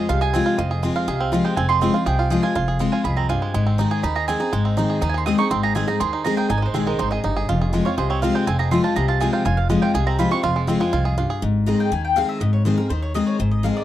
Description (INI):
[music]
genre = bluegrass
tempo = 244 BPM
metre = 4/4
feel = straight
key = F minor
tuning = A4 = 439 Hz
[part]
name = bluegrass banjo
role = melody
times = 0.0-11.4 s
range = Ab3 to Ab4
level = -26 LUFS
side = right 4 dB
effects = none
[part]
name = picked steel-string acoustic guitar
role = accompaniment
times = 0.0-13.8 s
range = F2 to Ab4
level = -22 LUFS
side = left 3 dB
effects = none
[part]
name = mandolin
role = stabs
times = 0.0-11.0 s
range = Ab4 to Eb6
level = -25 LUFS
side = right 7 dB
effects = none
[part]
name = upright bass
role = bass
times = 0.1-13.7 s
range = F1 to Eb2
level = -23 LUFS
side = equal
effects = none
[part]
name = mandolin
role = melody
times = 11.7-13.8 s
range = Bb4 to Bb5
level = -25 LUFS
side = left 6 dB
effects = none
[sound]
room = little or no reverb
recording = dry, close 1970s-style studio recording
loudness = -18 LUFS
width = side -13 dB against mid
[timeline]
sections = 0.0-11.4 A section; 11.4-13.8 B section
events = mandolin solo 0.0-11.4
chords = 0.0 Fm; 3.5 Abadd9; 7.5 Fm; 11.4 Ab